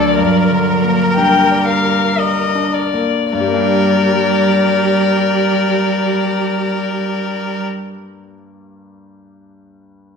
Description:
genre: classical, slow romantic movement for piano quintet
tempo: 50-62 BPM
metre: 3/4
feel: rubato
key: G minor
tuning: A4 = 436 Hz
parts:
  - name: muted violin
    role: melody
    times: 0.0-7.6 s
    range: D5 to G5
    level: -17 LUFS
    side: left 8 dB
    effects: none
  - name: muted cello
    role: second line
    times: 0.0-7.6 s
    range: F#3 to G3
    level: -18 LUFS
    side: right 3 dB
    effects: none
  - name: muted violin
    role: second line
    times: 0.0-7.6 s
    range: A4 to Bb4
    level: -22 LUFS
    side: left 2 dB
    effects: none
  - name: bright concert grand piano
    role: accompaniment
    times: 0.0-10.2 s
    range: D2 to D5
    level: -21 LUFS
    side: left 2 dB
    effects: none
  - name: muted viola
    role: accompaniment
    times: 0.0-7.6 s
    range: G4 to Bb4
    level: -23 LUFS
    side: right 3 dB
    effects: none
room: wet recital hall reverb, RT60 1.4 s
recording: none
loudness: -13 LUFS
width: side -6 dB against mid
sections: 0.0-3.3 A section; 3.3-6.9 B section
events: slowing down 0.0-3.3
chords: 0.2 Gm

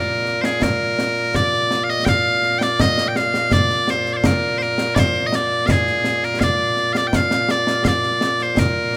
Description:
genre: scottish traditional, Scottish pipe music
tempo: 83 BPM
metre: 3/4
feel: straight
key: Bb mixolydian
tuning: A4 = 442 Hz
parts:
  - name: loud bright bagpipes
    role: melody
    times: 0.0-9.0 s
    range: Bb2 to G5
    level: -20 LUFS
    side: equal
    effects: none
  - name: concert snare drum and concert bass drum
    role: drums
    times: 0.3-9.0 s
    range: none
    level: -24 LUFS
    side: equal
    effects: none
room: light reverb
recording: none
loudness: -19 LUFS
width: mono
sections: 0.0-9.0 A section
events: none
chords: none

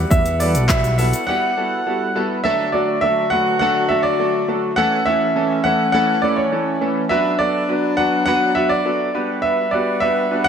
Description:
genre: dance-pop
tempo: 103 BPM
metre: 4/4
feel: straight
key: D major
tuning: A4 = 440 Hz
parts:
  - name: clear baby grand piano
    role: accompaniment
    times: 0.0-10.5 s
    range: E3 to B4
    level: -22 LUFS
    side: equal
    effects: analog chorus, sidechain pumping
  - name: clear woodwind section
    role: sustained chords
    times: 0.0-10.5 s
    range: D3 to F#5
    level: -24 LUFS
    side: left 2 dB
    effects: sidechain pumping
  - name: fat analog bass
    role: bass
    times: 0.0-1.1 s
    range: B1 to E2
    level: -18 LUFS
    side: equal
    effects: sidechain pumping
  - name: clear concert grand piano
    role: melody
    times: 0.1-10.5 s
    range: C#5 to F#5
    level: -19 LUFS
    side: right 1 dB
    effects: digital delay
  - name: deep house drum kit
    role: drums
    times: 0.1-1.3 s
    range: handclaps, hi-hat, kick drum, shaker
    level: -20 LUFS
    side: equal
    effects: overdrive
room: wet lush hall reverb, RT60 1.9 s, small room ambience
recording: bright 1980s-style digital production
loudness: -16 LUFS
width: side -7 dB against mid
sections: 0.0-2.4 A section; 2.4-10.5 A section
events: break 1.3-2.4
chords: 0.0 Emadd9; 2.4 D; 4.8 A; 7.1 Bm; 9.1 Gmaj7

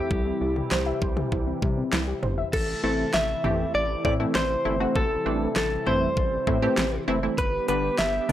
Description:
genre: synth-pop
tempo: 99 BPM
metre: 4/4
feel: straight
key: unclear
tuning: A4 = 440 Hz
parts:
  - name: direct-recorded clean electric guitar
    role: melody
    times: 0.0-8.3 s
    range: G4 to E5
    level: -27 LUFS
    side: equal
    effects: analog delay
  - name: lush unison pad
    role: sustained chords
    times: 0.0-8.3 s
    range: C3 to G4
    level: -33 LUFS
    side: equal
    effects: chorus, phaser
  - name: warbly dusty pluck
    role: arpeggios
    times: 0.0-2.5 s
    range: G3 to E5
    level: -31 LUFS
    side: equal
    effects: chorus, analog delay
  - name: round analog bass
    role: bass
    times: 0.1-8.3 s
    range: F#1 to C3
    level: -31 LUFS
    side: equal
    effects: none
  - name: pop drum kit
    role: drums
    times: 0.1-8.3 s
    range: crash cymbal, hi-hat, kick drum, snare drum, toms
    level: -28 LUFS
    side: equal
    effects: none
  - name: funky polysynth comp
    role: accompaniment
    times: 2.8-8.3 s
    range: D3 to G4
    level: -27 LUFS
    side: equal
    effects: chorus
room: light reverb, digital ambience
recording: dry, gritty hardware recording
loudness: -22 LUFS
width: side -12 dB against mid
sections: 0.0-2.5 A section; 2.5-8.3 B section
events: none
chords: 0.1 C; 2.5 Am; 7.4 G

